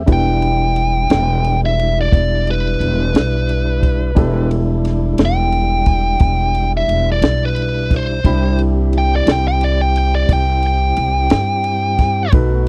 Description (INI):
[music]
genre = slow blues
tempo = 59 BPM (dotted quarters)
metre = 12/8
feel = straight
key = E minor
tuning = A4 = 441 Hz
[part]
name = dark grand piano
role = accompaniment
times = 0.0-12.7 s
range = D4 to B5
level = -27 LUFS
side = equal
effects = none
[part]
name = tonewheel organ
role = sustained chords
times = 0.0-12.7 s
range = G3 to G4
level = -27 LUFS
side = equal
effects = slow rotary speaker
[part]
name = upright bass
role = bass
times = 0.0-12.7 s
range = E1 to G2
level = -19 LUFS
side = equal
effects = none
[part]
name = biting lead guitar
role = melody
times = 0.1-12.3 s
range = B4 to G5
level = -21 LUFS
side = equal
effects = overdrive
[part]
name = compact cocktail drum kit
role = drums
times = 0.1-12.5 s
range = kick drum, ride cymbal, snare drum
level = -16 LUFS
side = equal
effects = none
[sound]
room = little or no reverb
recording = dry, close 1970s-style studio recording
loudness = -16 LUFS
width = mono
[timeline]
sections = 0.0-12.7 A section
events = lead electric guitar solo 0.0-12.7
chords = 0.1 Em7; 8.2 Cmaj7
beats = | 0.08 1.10 2.12 3.14 | 4.16 5.18 6.21 7.23 | 8.25 9.27 10.29 11.31 | 12.33